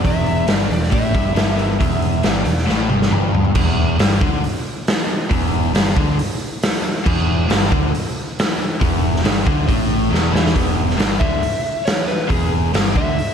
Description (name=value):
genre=blues rock power trio and southern rock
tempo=137 BPM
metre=4/4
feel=straight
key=unclear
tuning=A4 = 441 Hz
part: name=overdriven slide guitar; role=melody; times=0.0-3.1, 11.2-13.3 s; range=G#4 to E5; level=-24 LUFS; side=left 1 dB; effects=slapback echo
part: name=overdriven electric guitar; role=riff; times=0.0-13.2 s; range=E2 to E3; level=-20 LUFS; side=left 1 dB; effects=none
part: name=overdriven picked electric bass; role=bass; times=0.0-13.2 s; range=E1 to E2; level=-21 LUFS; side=equal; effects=none
part: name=raw garage drum kit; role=drums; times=0.0-13.3 s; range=crash cymbal, hi-hat, kick drum, snare drum, toms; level=-18 LUFS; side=equal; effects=none
room=light reverb, studio ambience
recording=none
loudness=-15 LUFS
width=side -7 dB against mid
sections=0.0-3.6 A section; 3.6-10.6 B section; 10.6-13.3 C section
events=drum fill 2.7-3.6, 10.1-10.6; electric slide guitar solo 10.6-13.3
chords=0.0 E5; 3.6 Em7